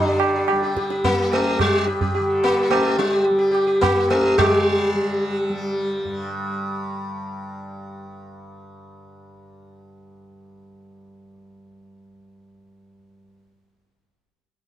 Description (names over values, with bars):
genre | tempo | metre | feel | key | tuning
indian classical, Hindustani | 108 BPM | 4/4 | straight | unclear | A4 = 439 Hz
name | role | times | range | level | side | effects
sitar | melody | 0.0-8.1 s | G3 to G4 | -19 LUFS | left 1 dB | none
tanpura | drone | 0.0-13.2 s | G2 to G3 | -32 LUFS | equal | none
tabla | percussion | 0.2-4.6 s | none | -24 LUFS | right 4 dB | none
room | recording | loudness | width
light reverb | dark, warm production | -18 LUFS | side -12 dB against mid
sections
0.0-4.4 A section; 4.4-6.6 B section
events
none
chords
none